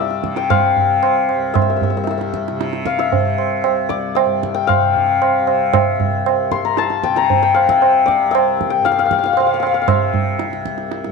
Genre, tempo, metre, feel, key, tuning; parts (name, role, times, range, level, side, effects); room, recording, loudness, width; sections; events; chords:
indian classical, Hindustani; 115 BPM; 4/4; straight; C raga khamaj; A4 = 442 Hz
santur; melody; 0.0-11.1 s; D5 to C6; -16 LUFS; left 9 dB; tape echo
tanpura; drone; 0.0-11.1 s; C2 to C3; -26 LUFS; right 1 dB
tabla; percussion; 0.1-11.1 s; -18 LUFS; right 10 dB
moderate echo chamber reverb, RT60 1.7 s, small room ambience; 1960s-style stereo with parts hard left and right; -14 LUFS; side -4 dB against mid
0.0-11.1 A section